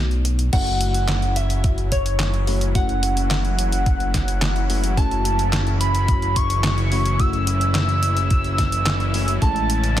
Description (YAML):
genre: synthwave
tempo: 108 BPM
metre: 4/4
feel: straight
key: F# minor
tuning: A4 = 440 Hz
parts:
  - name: warm velvety synth lead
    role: melody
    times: 0.0-10.0 s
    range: D#4 to E6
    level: -25 LUFS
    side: equal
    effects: chorus, cassette tape, ping-pong delay
  - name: FM electric piano with soft pad layer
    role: stabs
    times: 0.0-10.0 s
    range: G#3 to F#4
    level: -30 LUFS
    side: left 6 dB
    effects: chorus, tremolo, cassette tape
  - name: chorused synth bass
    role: bass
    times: 0.0-10.0 s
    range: F#1 to B1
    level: -21 LUFS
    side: equal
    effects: sidechain pumping
  - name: detuned 8-bit digital drum machine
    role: drums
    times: 0.1-10.0 s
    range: crash cymbal, handclaps, hi-hat, snare drum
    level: -26 LUFS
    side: equal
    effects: overdrive
  - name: soft synth bell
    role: second line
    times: 0.5-10.0 s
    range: C#5 to E6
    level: -34 LUFS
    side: equal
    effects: none
  - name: soft supersaw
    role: sustained chords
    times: 0.5-10.0 s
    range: C#3 to E4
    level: -29 LUFS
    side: equal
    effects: vintage 12-bit sampler grit, sidechain pumping
  - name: electronic kick drum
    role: drums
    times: 0.5-9.5 s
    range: none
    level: -20 LUFS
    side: equal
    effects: none
room: little or no reverb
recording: dense, heavily limited modern master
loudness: -18 LUFS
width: side -12 dB against mid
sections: 0.5-10.0 A section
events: break 0.0-0.5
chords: 0.0 B7; 0.5 F#m7; 9.4 Amaj7